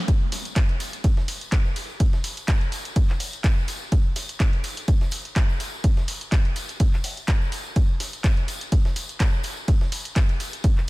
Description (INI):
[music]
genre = house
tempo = 125 BPM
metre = 4/4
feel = swing 55% on 16ths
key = none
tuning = none
[part]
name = dusty soul sampler-style drum kit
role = drums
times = 0.1-10.8 s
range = hi-hat, ride cymbal, snare drum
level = -39 LUFS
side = right 2 dB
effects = sidechain pumping on cymbals, high-pass filter on cymbals, studio reverb, high-pass filter on snare, sidechain pumping on hats, high-pass filter on hats
[part]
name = electronic kick drum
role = drums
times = 0.1-10.7 s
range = none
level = -20 LUFS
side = equal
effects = studio reverb
[part]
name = punchy analog drum machine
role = drums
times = 0.1-10.9 s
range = handclaps, hi-hat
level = -31 LUFS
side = equal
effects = studio reverb
[part]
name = tambourine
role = percussion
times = 0.1-10.9 s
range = none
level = -38 LUFS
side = left 4 dB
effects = none
[sound]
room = digital ambience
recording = none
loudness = -21 LUFS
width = side -21 dB against mid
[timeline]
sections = 0.0-10.9 A section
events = none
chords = none